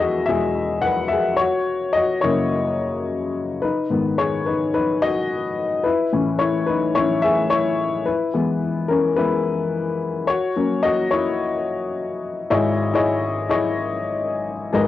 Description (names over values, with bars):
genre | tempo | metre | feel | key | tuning
pop | 108 BPM | 4/4 | swing 56% on 16ths | unclear | A4 = 440 Hz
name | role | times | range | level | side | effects
warm upright piano | solo | 0.0-14.9 s | G#1 to F#5 | -19 LUFS | left 3 dB | none
room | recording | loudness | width
wet studio reverb, RT60 0.6 s | home recording on cassette | -19 LUFS | side -13 dB against mid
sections
0.0-12.5 A section; 12.5-14.9 B section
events
upright piano solo 0.0-12.5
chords
0.0 E; 1.4 F#; 3.6 G#m; 5.8 A; 8.1 E; 10.3 F#; 12.5 C#madd9/G#